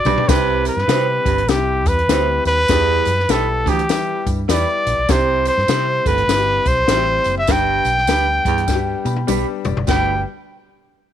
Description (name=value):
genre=uptempo 1960s-style soul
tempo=100 BPM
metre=4/4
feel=swing 62% on 8ths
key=unclear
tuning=A4 = 440 Hz
part: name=clear trumpet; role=melody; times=0.0-10.2 s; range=G4 to G5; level=-18 LUFS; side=equal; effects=none
part: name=warm upright piano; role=accompaniment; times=0.0-10.2 s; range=G3 to B5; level=-26 LUFS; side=left 12 dB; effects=none
part: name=tambourine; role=percussion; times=0.0-10.2 s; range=none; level=-33 LUFS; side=right 18 dB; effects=none
part: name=warm baritone saxophone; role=riff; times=0.1-10.2 s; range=D2 to C3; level=-23 LUFS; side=right 14 dB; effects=none
part: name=vintage muted fingered electric bass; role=bass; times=0.1-10.2 s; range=F1 to E3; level=-22 LUFS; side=right 1 dB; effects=none
part: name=compact cocktail drum kit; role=drums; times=0.1-10.1 s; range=hi-hat, kick drum, ride cymbal, snare drum, toms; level=-21 LUFS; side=left 3 dB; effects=none
part: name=electric guitar through a small old amp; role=stabs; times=0.9-10.1 s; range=D4 to C5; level=-26 LUFS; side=right 13 dB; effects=none
room=small room ambience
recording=1960s-style stereo with parts hard left and right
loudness=-15 LUFS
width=side -10 dB against mid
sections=0.3-9.9 A section; 9.9-11.1 B section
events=drum fill 0.0, 8.7-9.9; upright piano fill 8.7-9.9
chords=0.3 C; 2.7 Em; 5.1 C; 7.5 G